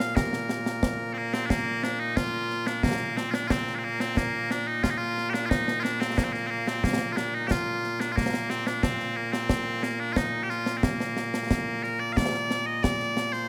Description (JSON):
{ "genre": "scottish traditional, Scottish pipe music", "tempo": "90 BPM", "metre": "2/4", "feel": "straight", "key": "Bb major", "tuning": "A4 = 437 Hz", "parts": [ { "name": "loud bright bagpipes", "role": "melody", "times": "0.0-13.5 s", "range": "Bb2 to F5", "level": "-30 LUFS", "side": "equal", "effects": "none" }, { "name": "concert snare drum and concert bass drum", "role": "drums", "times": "0.0-13.4 s", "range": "none", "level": "-31 LUFS", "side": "equal", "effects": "none" } ], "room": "light reverb", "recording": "none", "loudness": "-28 LUFS", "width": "mono", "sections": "0.0-1.5 A section; 1.5-12.2 A section; 12.2-13.5 B section", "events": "none", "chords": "none" }